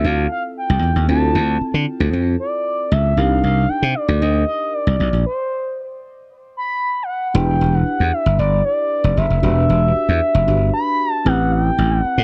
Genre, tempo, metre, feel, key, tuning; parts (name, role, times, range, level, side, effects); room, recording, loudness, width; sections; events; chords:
early-eighties boogie funk; 115 BPM; 4/4; straight; A4 = 441 Hz
expressive synth lead; melody; 0.0-12.2 s; C5 to B5; -23 LUFS; equal; chorus
mellow FM electric piano; accompaniment; 0.0-12.2 s; C4 to B4; -27 LUFS; equal; chorus, phaser
slap bass; bass; 0.0-12.2 s; E1 to D3; -18 LUFS; equal
little or no reverb; dry, close 1970s-style studio recording; -18 LUFS; mono
0.0-7.3 A section; 7.3-12.2 B section
stop 5.3-7.3
0.0 Dm9; 3.2 Cm9; 5.3 N.C.; 7.3 Em9; 11.3 Am9